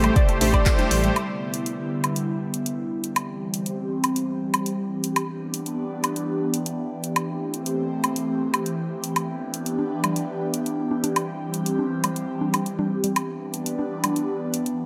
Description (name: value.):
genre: progressive house.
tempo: 120 BPM.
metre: 4/4.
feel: straight.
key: E minor.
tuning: A4 = 440 Hz.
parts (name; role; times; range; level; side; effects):
airy breathy pad; sustained chords; 0.0-14.9 s; C3 to G4; -28 LUFS; equal; chorus, phaser, sidechain pumping.
analog pluck; arpeggios; 0.0-1.1 s; A3 to D5; -30 LUFS; equal; chorus, sidechain pumping, dub echo.
soft supersaw; stabs; 0.0-1.1 s; A3 to C5; -29 LUFS; equal; vintage 12-bit sampler grit, sidechain pumping, low-pass filter, dub echo.
dark detuned saw bass; bass; 0.0-1.1 s; A1; -26 LUFS; equal; sidechain pumping.
deep house drum kit; drums; 0.0-14.8 s; handclaps, hi-hat, woodblock; -28 LUFS; equal; sidechain pumping on hats, sidechain pumping on perc.
congas; percussion; 0.0-1.1, 9.8-14.1 s; none; -32 LUFS; equal; sidechain pumping on perc.
electronic kick drum; drums; 0.2-0.8 s; none; -21 LUFS; equal; none.
room: moderate lush hall reverb, RT60 2.3 s.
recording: none.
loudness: -25 LUFS.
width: mono.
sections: 0.0-1.2 A section; 1.2-14.9 B section.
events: band accent 0.7.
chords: 0.0 Am7; 1.2 Em7; 3.2 C; 5.2 G6; 7.2 Am7; 9.2 Em7; 11.2 C; 13.2 G6.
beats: 0.16 0.66 | 1.16 1.66 2.16 2.66 | 3.16 3.66 4.16 4.66 | 5.16 5.66 6.16 6.66 | 7.16 7.66 8.16 8.66 | 9.16 9.66 10.16 10.66 | 11.16 11.66 12.16 12.66 | 13.16 13.66 14.16 14.66.